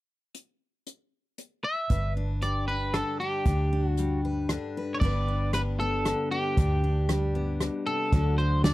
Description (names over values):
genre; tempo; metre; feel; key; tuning
honky-tonk and classic country; 116 BPM; 3/4; straight; G major; A4 = 439 Hz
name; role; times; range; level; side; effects
unplugged drum kit; drums; 0.3-8.7 s; crash cymbal, hi-hat, kick drum, rim click, snare drum; -27 LUFS; equal; none
electric guitar at the edge of break-up; melody; 1.6-8.7 s; G4 to E5; -30 LUFS; equal; none
picked steel-string acoustic guitar; accompaniment; 1.9-8.7 s; G2 to B4; -32 LUFS; left 3 dB; none
vintage muted fingered electric bass; bass; 1.9-8.7 s; G1 to D2; -27 LUFS; equal; none
room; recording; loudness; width
little or no reverb; dry, close 1970s-style studio recording; -25 LUFS; side -17 dB against mid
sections
0.3-1.9 A section; 1.9-5.0 B section; 5.0-8.7 C section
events
none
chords
0.3 N.C.; 1.9 G; 8.1 D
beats
| 0.35 0.87 1.39 | 1.90 2.42 2.94 | 3.46 3.98 4.50 | 5.02 5.54 6.05 | 6.57 7.09 7.61 | 8.13 8.65